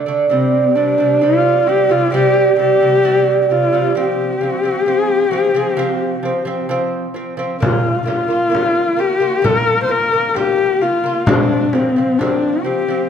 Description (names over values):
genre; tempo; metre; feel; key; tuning
mongolian traditional, Mongolian folk; 66 BPM; 4/4; straight; unclear; A4 = 437 Hz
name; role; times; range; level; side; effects
lute; arpeggios; 0.0-13.1 s; C3 to F4; -17 LUFS; right 4 dB; none
dark horsehead fiddle; melody; 0.3-13.1 s; C4 to C5; -15 LUFS; left 4 dB; none
frame drum; percussion; 7.6-12.4 s; none; -19 LUFS; left 1 dB; none
room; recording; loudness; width
moderate recital hall reverb, RT60 1.4 s; dark, warm production; -13 LUFS; side -8 dB against mid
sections
0.0-7.6 A section; 7.6-13.1 B section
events
none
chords
0.3 C5; 4.0 F5; 7.6 Bb5; 11.3 F5